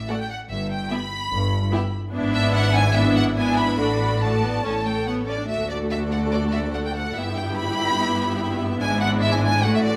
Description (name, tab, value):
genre	quick classical-period movement for string orchestra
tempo	145 BPM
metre	4/4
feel	straight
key	unclear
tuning	A4 = 439 Hz
part	rich studio violin section	melody	0.0-10.0 s	D5 to B5	-28 LUFS	equal	none
part	clear studio violin section	second line	0.1-10.0 s	E4 to E5	-32 LUFS	equal	none
part	rich studio viola section	accompaniment	0.1-10.0 s	A3 to F#4	-28 LUFS	equal	none
part	rich studio cello section	bass	0.5-10.0 s	D2 to A2	-28 LUFS	equal	none
part	rich studio double bass section	bass	0.5-10.0 s	G1 to D2	-31 LUFS	equal	none
room	wet recital hall reverb, RT60 1.6 s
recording	none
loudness	-22 LUFS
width	mono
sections	0.0-10.0 A section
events	none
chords	0.5 Em/G; 2.1 E7/G#; 3.8 D/A; 4.7 A; 5.5 D; 7.2 Em/G; 8.8 E7/G#